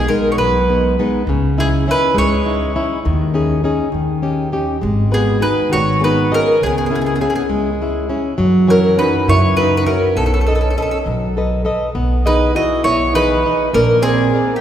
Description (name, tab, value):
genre	italian folk, Italian serenade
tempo	68 BPM (dotted quarters)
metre	6/8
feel	straight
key	unclear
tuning	A4 = 440 Hz
part	mandolin	melody	0.0-14.6 s	G4 to D#5	-17 LUFS	equal	none
part	flamenco guitar	accompaniment	0.0-14.6 s	C#3 to D#5	-18 LUFS	left 1 dB	none
part	upright bass	bass	0.0-14.3 s	G#1 to F#2	-20 LUFS	right 1 dB	none
part	felt-muted upright piano	second line	5.1-14.6 s	A#3 to F#4	-22 LUFS	right 3 dB	none
room	wet church reverb, RT60 3.1 s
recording	recorded in a church or concert hall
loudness	-13 LUFS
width	side -10 dB against mid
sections	0.0-14.6 A section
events	none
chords	0.0 B6; 1.3 C#madd9; 3.0 D#7sus4; 3.9 D#7; 4.8 G#m7; 6.6 C#m; 8.4 F#7; 10.2 B7; 11.9 Emaj7/B; 13.7 A#7